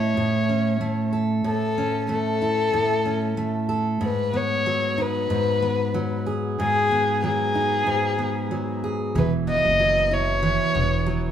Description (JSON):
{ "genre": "pop", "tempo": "93 BPM", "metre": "4/4", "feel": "swing 55% on 16ths", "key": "unclear", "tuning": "A4 = 438 Hz", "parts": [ { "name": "dark violin", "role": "melody", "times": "0.0-11.3 s", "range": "G#4 to D#5", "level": "-23 LUFS", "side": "left 2 dB", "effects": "none" }, { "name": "fingerpicked steel-string acoustic guitar", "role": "accompaniment", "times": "0.0-11.3 s", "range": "G#2 to A4", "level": "-24 LUFS", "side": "right 1 dB", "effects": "none" }, { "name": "upright bass", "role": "bass", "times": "9.2-11.3 s", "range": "E1 to F#1", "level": "-25 LUFS", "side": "equal", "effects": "none" } ], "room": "moderate large studio reverb, RT60 1.1 s", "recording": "band playing live in one room", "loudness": "-20 LUFS", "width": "side -9 dB against mid", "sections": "0.0-11.3 A section", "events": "none", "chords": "0.0 A; 4.0 G#m7; 9.2 Esus2" }